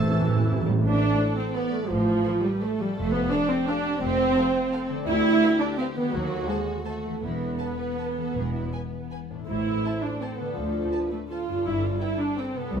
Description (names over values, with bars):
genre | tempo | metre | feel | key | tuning
classical | 149-184 BPM | 3/4 | rubato | A minor | A4 = 437 Hz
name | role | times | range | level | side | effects
warm studio violin section | melody | 0.0-12.8 s | B3 to A5 | -40 LUFS | right 1 dB | none
large flute ensemble | second line | 0.0-0.6 s | E6 | -38 LUFS | right 5 dB | none
warm clarinet | second line | 0.0-0.6 s | C5 | -39 LUFS | left 4 dB | none
warm oboe | second line | 0.0-0.6 s | A4 | -38 LUFS | right 4 dB | none
warm studio violin section | second line | 0.0-12.5 s | A4 to A5 | -42 LUFS | equal | none
dark studio viola section | accompaniment | 0.0-12.8 s | E3 to F4 | -26 LUFS | right 2 dB | none
mellow bassoon | accompaniment | 0.0-0.6 s | A3 | -38 LUFS | right 1 dB | none
concert harp | arpeggios | 0.0-12.8 s | G2 to C5 | -35 LUFS | left 8 dB | none
timpani | percussion | 0.0-0.8, 8.4-10.0 s | E2 to A2 | -28 LUFS | right 2 dB | none
mellow French horn section | sustained chords | 0.1-0.6 s | A3 to C4 | -38 LUFS | left 2 dB | none
warm studio cello section | bass | 0.8-12.8 s | C2 to A2 | -32 LUFS | equal | none
warm studio double bass section | bass | 0.8-12.8 s | E1 to D#2 | -33 LUFS | right 1 dB | none
room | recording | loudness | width
moderate stone room reverb, RT60 1.1 s | none | -23 LUFS | side -7 dB against mid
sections
0.8-12.8 A section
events
timpani fill 0.0-0.8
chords
0.0 Am; 3.0 F; 5.1 Bdim/D; 6.1 D#dim7; 7.2 Esus4; 8.4 E; 9.5 Am; 10.6 Dm7; 11.7 G